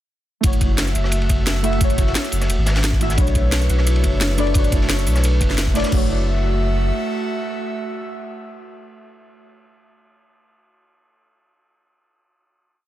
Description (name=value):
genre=liquid drum and bass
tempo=175 BPM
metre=4/4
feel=straight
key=F# minor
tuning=A4 = 440 Hz
part: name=deep mellow chord stab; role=accompaniment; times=0.4-11.2 s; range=A3 to E5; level=-25 LUFS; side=equal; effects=analog chorus, tape echo
part: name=airy breathy pad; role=sustained chords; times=0.7-9.4 s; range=A3 to E5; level=-27 LUFS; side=right 2 dB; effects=chorus, sidechain pumping
part: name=saturated sub bass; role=bass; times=0.4-6.9 s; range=E1 to B1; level=-19 LUFS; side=equal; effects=none
part: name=crunchy breakbeat drum kit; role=drums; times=0.4-5.9 s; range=ride cymbal, snare drum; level=-30 LUFS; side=equal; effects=high-pass filter on cymbals, high-pass filter on snare, high-pass filter on room
part: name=drum and bass drum kit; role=drums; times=0.4-6.0 s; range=crash cymbal, hi-hat, rim click, snare drum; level=-24 LUFS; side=equal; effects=none
part: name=electronic kick drum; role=drums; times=0.4-6.0 s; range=none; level=-19 LUFS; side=equal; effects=none
part: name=concert harp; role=arpeggios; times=3.2-8.5 s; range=E4 to C#5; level=-31 LUFS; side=right 1 dB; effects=tape echo
room=light reverb, studio reverb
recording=dense, heavily limited modern master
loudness=-16 LUFS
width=side -13 dB against mid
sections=0.4-5.9 drop; 5.9-8.7 final chord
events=drop 0.4-5.9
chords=0.4 F#m7; 3.2 Bm11; 5.9 F#m7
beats=| 0.44 0.78 1.12 1.47 | 1.81 2.15 2.50 2.84 | 3.18 3.52 3.87 4.21 | 4.55 4.89 5.24 5.58 | 5.92 6.27 6.61 6.95 | 7.29 7.64 7.98 8.32